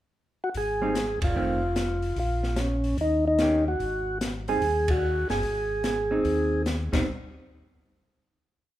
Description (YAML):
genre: soul jazz organ trio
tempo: 147 BPM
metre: 4/4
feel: swing 66% on 8ths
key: Ab major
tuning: A4 = 440 Hz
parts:
  - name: percussive tonewheel organ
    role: melody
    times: 0.4-6.6 s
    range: Db4 to Ab4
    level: -26 LUFS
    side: equal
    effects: slow rotary speaker
  - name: mellow tonewheel organ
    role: bass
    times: 0.5-7.1 s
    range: F1 to Eb2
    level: -30 LUFS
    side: equal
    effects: slow rotary speaker
  - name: open jazz drum kit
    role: drums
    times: 0.5-7.0 s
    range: crash cymbal, hi-hat, kick drum, ride cymbal, snare drum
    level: -31 LUFS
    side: left 1 dB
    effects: none
  - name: hollow-body jazz guitar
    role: accompaniment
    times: 0.8-7.1 s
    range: Eb3 to G4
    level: -30 LUFS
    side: right 1 dB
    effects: none
room: light reverb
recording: none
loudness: -24 LUFS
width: side -13 dB against mid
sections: 0.0-0.5 pickup bar; 0.5-7.1 A section; 7.1-8.7 final hit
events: band accent 1.2, 4.8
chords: 0.0 N.C.; 0.5 Abmaj7; 1.4 F7; 2.2 Bbm; 3.0 Eb7; 3.8 Abmaj7; 7.1 N.C.